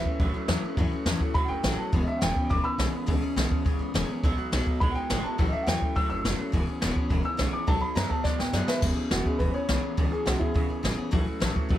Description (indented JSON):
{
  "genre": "rockabilly",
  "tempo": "208 BPM",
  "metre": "4/4",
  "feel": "straight",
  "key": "E major",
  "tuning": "A4 = 444 Hz",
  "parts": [
    { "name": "dark upright piano", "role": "melody", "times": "0.0-11.2 s", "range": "E4 to E6", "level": "-31 LUFS", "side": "equal", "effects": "plate reverb" },
    { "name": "picked steel-string acoustic guitar", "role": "accompaniment", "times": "0.0-11.8 s", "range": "A2 to G#4", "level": "-33 LUFS", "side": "left 4 dB", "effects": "plate reverb" },
    { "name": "electric guitar through a small old amp", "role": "riff", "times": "0.0-11.8 s", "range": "E2 to G#3", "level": "-33 LUFS", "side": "right 1 dB", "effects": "wide subtle chorus" },
    { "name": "upright bass", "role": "bass", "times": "0.1-11.8 s", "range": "E1 to F#2", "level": "-31 LUFS", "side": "equal", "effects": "none" },
    { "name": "jazz brush drum kit", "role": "drums", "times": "0.1-11.8 s", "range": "crash cymbal, hi-hat, kick drum, snare drum", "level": "-27 LUFS", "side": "equal", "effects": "none" }
  ],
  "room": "light reverb",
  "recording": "none",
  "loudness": "-24 LUFS",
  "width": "side -12 dB against mid",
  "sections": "0.0-8.8 A section; 8.8-11.8 B section",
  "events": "upright piano solo 0.0-8.8; drum fill 8.3-8.8",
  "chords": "0.0 A6; 1.9 E6; 4.2 B6; 5.4 A6; 6.5 E6; 7.7 B6; 8.8 E6; 11.1 A6"
}